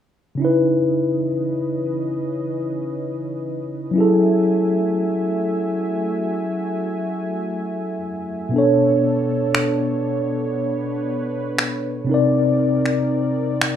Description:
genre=contemporary R&B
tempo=59 BPM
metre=4/4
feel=straight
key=unclear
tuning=A4 = 440 Hz
part: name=mellow tine electric piano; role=accompaniment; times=0.4-13.8 s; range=B2 to D5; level=-19 LUFS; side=left 1 dB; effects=medium stereo tremolo
part: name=warm analog pad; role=sustained chords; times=0.4-13.8 s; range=E3 to G#5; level=-28 LUFS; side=right 2 dB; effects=chorus
part: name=electronic finger snaps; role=drums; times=9.5-13.8 s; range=none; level=-20 LUFS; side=equal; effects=none
room=light reverb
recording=rough home demo mix, studio reverb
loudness=-18 LUFS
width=side -9 dB against mid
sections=0.4-13.8 A section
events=none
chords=0.4 C#m9; 4.0 F#m9; 8.5 Bm9; 12.1 Cm9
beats=| 0.39 1.41 2.42 3.44 | 4.46 5.47 6.49 7.51 | 8.53 9.54 10.56 11.58 | 12.59 13.61

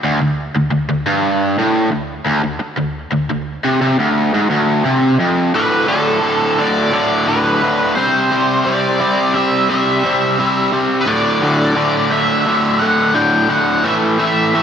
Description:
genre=rock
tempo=87 BPM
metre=4/4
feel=straight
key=unclear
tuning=A4 = 440 Hz
part: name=overdriven electric guitar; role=riff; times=0.0-14.6 s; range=D2 to C4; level=-14 LUFS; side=equal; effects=slapback echo
part: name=octave-fuzz lead guitar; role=melody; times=5.6-14.6 s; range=A4 to G5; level=-17 LUFS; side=equal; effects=wah, distortion, slapback echo
room=wet lush hall reverb, RT60 2.5 s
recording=big arena sound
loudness=-13 LUFS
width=side -8 dB against mid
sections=0.0-5.5 A section; 5.5-14.6 B section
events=none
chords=0.0 D5; 7.9 C; 11.1 D5; 13.8 A5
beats=| 0.04 0.72 1.41 2.10 | 2.78 3.47 4.16 4.84 | 5.53 6.22 6.91 7.60 | 8.29 8.99 9.68 10.37 | 11.06 11.76 12.45 13.14 | 13.84 14.53

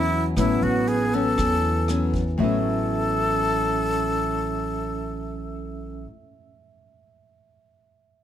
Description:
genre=bossa nova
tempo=119 BPM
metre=4/4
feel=straight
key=A major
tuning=A4 = 438 Hz
part: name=breathy jazz flute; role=melody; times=0.0-6.1 s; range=E4 to A4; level=-25 LUFS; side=left 2 dB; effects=none
part: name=wooden-headed alto flute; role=second line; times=0.0-6.0 s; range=B3 to C#4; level=-30 LUFS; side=right 6 dB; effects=none
part: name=barky tine electric piano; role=accompaniment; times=0.0-8.2 s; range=E5 to Ab5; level=-38 LUFS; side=right 8 dB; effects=overdrive
part: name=nylon-string guitar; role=accompaniment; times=0.0-6.1 s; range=A2 to C#4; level=-27 LUFS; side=left 5 dB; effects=none
part: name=upright bass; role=bass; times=0.0-6.0 s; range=A1 to E2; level=-28 LUFS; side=right 1 dB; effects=none
part: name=vintage brush drum kit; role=drums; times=0.1-2.3 s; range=hi-hat, kick drum, rim click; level=-31 LUFS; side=right 1 dB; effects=none
room=light reverb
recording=none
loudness=-21 LUFS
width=side -10 dB against mid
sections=0.0-2.4 A section; 2.4-6.4 B section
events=none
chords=0.0 A69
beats=| 0.37 0.88 1.38 1.89 | 2.39 2.90 3.40 3.90 | 4.41 4.91 5.42 5.92

